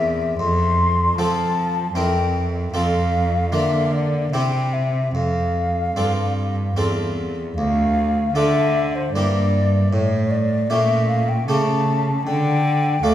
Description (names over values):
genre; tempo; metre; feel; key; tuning
classical, baroque-style sonata movement with continuo; 76 BPM; 3/4; straight; F major, D minor from 7.6 s; A4 = 440 Hz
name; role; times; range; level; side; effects
mellow hollow concert flute; melody; 0.0-13.1 s; C5 to C6; -22 LUFS; left 3 dB; none
harpsichord; accompaniment; 0.0-13.1 s; D2 to Bb4; -24 LUFS; right 2 dB; none
rich cello; bass; 0.0-13.1 s; D2 to F3; -20 LUFS; right 1 dB; none
room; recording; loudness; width
wet recital hall reverb, RT60 1.6 s; heard from further back in the room; -18 LUFS; side -11 dB against mid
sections
0.0-7.6 A section; 7.6-13.1 A section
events
none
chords
0.4 F; 1.9 C7/F; 2.7 F; 3.5 Bb/D; 4.3 C; 5.1 F; 7.6 Dm; 9.1 Edim/G; 9.9 A7; 12.3 D5